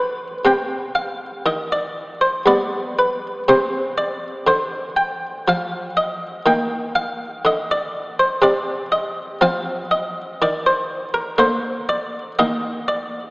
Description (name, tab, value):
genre	classical, baroque-style suite movement for harpsichord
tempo	60 BPM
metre	3/4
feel	rubato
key	C minor, Eb major from 6.4 s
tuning	A4 = 444 Hz
part	buff-stop harpsichord	solo	0.0-13.3 s	G2 to G5	-18 LUFS	equal	none
room	wet church reverb, RT60 3.3 s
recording	heard from further back in the room, AM radio sound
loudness	-18 LUFS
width	side -27 dB against mid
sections	0.0-13.3 A section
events	none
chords	0.4 Cm; 2.5 G; 3.5 Csus24; 6.4 Eb5; 8.4 N.C.; 9.4 F5; 11.4 Bb/D; 12.4 Eb5